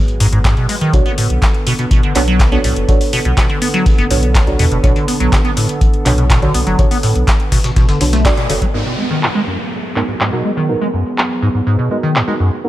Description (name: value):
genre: acid house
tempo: 123 BPM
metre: 4/4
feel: straight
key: unclear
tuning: A4 = 440 Hz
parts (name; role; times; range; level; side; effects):
- warm analog pad; sustained chords; 0.0-12.7 s; D3 to A4; -22 LUFS; right 1 dB; chorus, sidechain pumping
- warm sub bass; bass; 0.0-8.6 s; F#1 to E2; -16 LUFS; equal; sidechain pumping
- dusty soul sampler-style drum kit; drums; 0.1-8.6 s; hi-hat, snare drum; -30 LUFS; left 1 dB; overdrive, high-pass filter on hats, high-pass filter on snare, high-pass filter on room
- electro analog drum machine; drums; 0.1-12.3 s; handclaps, hi-hat; -20 LUFS; equal; low-pass filter on hats, low-pass filter on cymbals, low-pass filter on snare
- liquid acid bass; riff; 0.2-12.5 s; F#2 to B3; -17 LUFS; equal; phaser, tube saturation, lush chorus, cassette tape, sidechain pumping, tape echo
- electronic kick drum; drums; 0.4-8.7 s; none; -14 LUFS; equal; none
- deep mellow chord stab; stabs; 0.9-12.7 s; B3 to D5; -21 LUFS; right 2 dB; chorus, vintage 12-bit sampler grit, tape echo
- downlifter; sound effects; 8.7-12.6 s; none; -25 LUFS; right 2 dB; none
room: light reverb, digital ambience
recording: none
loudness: -12 LUFS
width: side -14 dB against mid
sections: 0.0-8.7 A section; 8.7-12.7 B section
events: filter sweep on acid bass 0.0-8.7; band accent 8.3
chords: 0.0 G#m7; 0.9 Bm7; 8.7 G#m7